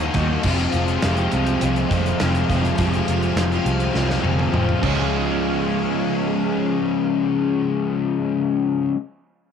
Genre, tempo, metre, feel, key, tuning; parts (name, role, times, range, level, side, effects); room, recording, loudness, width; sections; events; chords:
rock, shoegaze and dream pop; 103 BPM; 4/4; straight; Db major; A4 = 440 Hz
phased string machine; sustained chords; 0.0-8.2 s; Db4 to C6; -31 LUFS; right 1 dB; ensemble chorus, phaser, cassette tape
distorted electric guitar; riff; 0.0-9.0 s; F2 to Eb4; -27 LUFS; left 1 dB; distortion, cassette tape
overdriven electric guitar; riff; 0.0-9.0 s; F2 to Gb4; -22 LUFS; left 9 dB; analog chorus, cassette tape
overdriven semi-hollow guitar; riff; 0.0-9.0 s; F2 to Eb4; -27 LUFS; right 11 dB; reverse reverb, cassette tape
vintage muted picked electric bass; bass; 0.0-8.9 s; F1 to Eb2; -23 LUFS; right 1 dB
gated 80s drum kit; drums; 0.0-5.0 s; crash cymbal, hi-hat, kick drum, snare drum, toms; -26 LUFS; right 1 dB; cassette tape
little or no reverb; home recording on cassette; -18 LUFS; side -7 dB against mid
0.0-5.1 A section; 5.1-7.5 B section
drum fill 4.0-5.1
0.4 Fm7; 4.8 Db